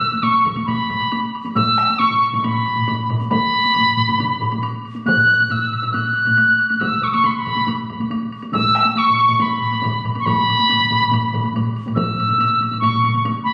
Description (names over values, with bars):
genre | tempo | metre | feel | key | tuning
japanese traditional, taiko drum ensemble | 138 BPM | 4/4 | straight | unclear | A4 = 441 Hz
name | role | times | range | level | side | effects
piccolo | melody | 0.0-13.5 s | B5 to F#6 | -18 LUFS | equal | none
taiko ensemble | percussion | 0.0-13.2 s | none | -33 LUFS | equal | none
woodblock | percussion | 0.0-13.5 s | none | -35 LUFS | equal | none
taiko ensemble | percussion | 0.1-13.5 s | none | -28 LUFS | equal | none
taiko ensemble | percussion | 0.5-12.1 s | none | -30 LUFS | equal | none
taiko ensemble | percussion | 1.6-13.2 s | none | -27 LUFS | equal | none
room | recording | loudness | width
wet recital hall reverb, RT60 1.4 s | recorded on a phone in the room, studio reverb | -18 LUFS | mono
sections
0.0-12.0 A section; 12.0-13.5 B section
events
speeding up 0.0-13.5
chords
none